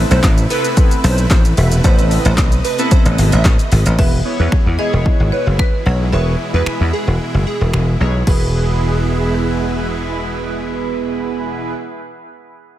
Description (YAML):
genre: dance-pop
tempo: 112 BPM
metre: 4/4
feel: straight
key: E major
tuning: A4 = 440 Hz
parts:
  - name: chorused polysynth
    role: accompaniment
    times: 0.0-11.7 s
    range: B3 to C#5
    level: -23 LUFS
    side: right 3 dB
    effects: sidechain pumping, dub echo
  - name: supersaw chords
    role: sustained chords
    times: 0.0-11.7 s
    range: B2 to D#5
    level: -24 LUFS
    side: equal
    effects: sidechain pumping
  - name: dry thumbed slap bass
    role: bass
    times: 0.0-11.7 s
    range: E1 to E2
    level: -15 LUFS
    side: equal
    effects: sidechain pumping
  - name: plucky unison lead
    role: melody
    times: 0.1-9.8 s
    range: G#4 to E5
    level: -25 LUFS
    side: right 3 dB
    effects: sidechain pumping, dub echo
  - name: punchy analog drum machine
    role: drums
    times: 0.1-9.5 s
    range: crash cymbal, finger snaps, handclaps, hi-hat, kick drum, rim click, shaker, snare drum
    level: -15 LUFS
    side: equal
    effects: overdrive
  - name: marimba with hard mallets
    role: melody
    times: 4.0-7.7 s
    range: B4 to F#5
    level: -26 LUFS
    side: left 4 dB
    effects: dub echo
room: light reverb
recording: echo-heavy mix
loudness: -13 LUFS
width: side -13 dB against mid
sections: 0.0-4.0 A section; 4.0-8.3 B section; 8.3-12.6 C section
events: drop 0.0-4.0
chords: 0.0 Amadd9; 4.0 E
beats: 0.24 0.77 1.31 | 1.84 2.38 2.91 3.45 | 3.99 4.52 5.06 5.59 | 6.13 6.66 7.20 7.74 | 8.27 8.81 9.34 9.88 | 10.41 10.95 11.49